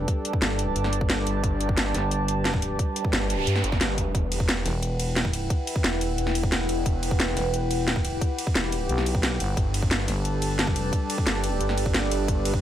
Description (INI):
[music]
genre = dark technical drum and bass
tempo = 177 BPM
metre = 4/4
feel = straight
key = unclear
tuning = A4 = 439 Hz
[part]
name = dark analog pad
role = sustained chords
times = 0.0-12.6 s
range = G3 to G5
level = -32 LUFS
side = left 1 dB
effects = chorus, sidechain pumping
[part]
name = growling FM bass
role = bass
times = 0.0-10.9 s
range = E1 to B1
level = -27 LUFS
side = equal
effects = none
[part]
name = warbly tape-like pad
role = texture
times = 0.0-12.6 s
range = E4 to A5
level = -31 LUFS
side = right 1 dB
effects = chorus, built-in reverb, phaser, sidechain pumping
[part]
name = drum and bass drum kit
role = drums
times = 0.1-12.5 s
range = hi-hat, ride cymbal, snare drum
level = -28 LUFS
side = equal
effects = none
[part]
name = electronic kick drum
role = drums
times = 0.1-12.6 s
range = none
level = -26 LUFS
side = equal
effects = none
[part]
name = wide detuned saw bass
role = bass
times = 0.4-12.6 s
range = E1 to G2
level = -28 LUFS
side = equal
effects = chorus, overdrive
[part]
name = noise sweep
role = sound effects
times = 3.0-4.1 s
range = none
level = -34 LUFS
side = right 5 dB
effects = none
[sound]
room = light reverb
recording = none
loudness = -22 LUFS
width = side -11 dB against mid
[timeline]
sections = 0.0-12.6 A section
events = noise sweep 3.0-4.1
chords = 0.0 G; 4.1 Em; 9.6 G